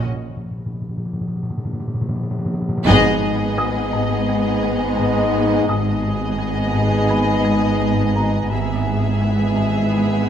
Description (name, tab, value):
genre	cinematic, suspense film score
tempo	85 BPM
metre	4/4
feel	straight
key	G# minor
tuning	A4 = 440 Hz
part	warm studio violin section	melody	0.0-10.3 s	D#5 to E5	-26 LUFS	left 3 dB	none
part	timpani	percussion	0.0-2.8 s	Bb2	-24 LUFS	equal	none
part	felt-muted upright piano	texture	0.0-10.3 s	Bb5 to Bb6	-31 LUFS	equal	none
part	warm studio violin section	second line	2.9-10.3 s	G#4	-27 LUFS	left 2 dB	none
part	warm studio viola section	accompaniment	2.9-10.3 s	B3	-28 LUFS	right 4 dB	none
part	clear trombone section	sustained chords	2.9-10.3 s	G#2 to G#3	-26 LUFS	right 5 dB	none
part	mellow French horn section	sustained chords	2.9-10.3 s	E3 to D#4	-24 LUFS	left 5 dB	none
part	folk marimba with hard mallets	riff	2.9-10.1 s	G#2 to G#3	-25 LUFS	left 5 dB	none
part	dark studio cello section	bass	2.9-10.3 s	G#2	-24 LUFS	right 3 dB	none
part	rich studio double bass section	bass	2.9-10.3 s	G#1	-24 LUFS	right 3 dB	none
room	moderate scoring stage reverb, RT60 1.9 s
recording	none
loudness	-17 LUFS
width	side -9 dB against mid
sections	0.0-2.9 A section; 2.9-10.3 B section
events	timpani fill 0.0-2.9; break 0.0-2.9; band accent 2.9-3.6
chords	0.0 N.C.; 2.9 G#m; 8.5 E/G#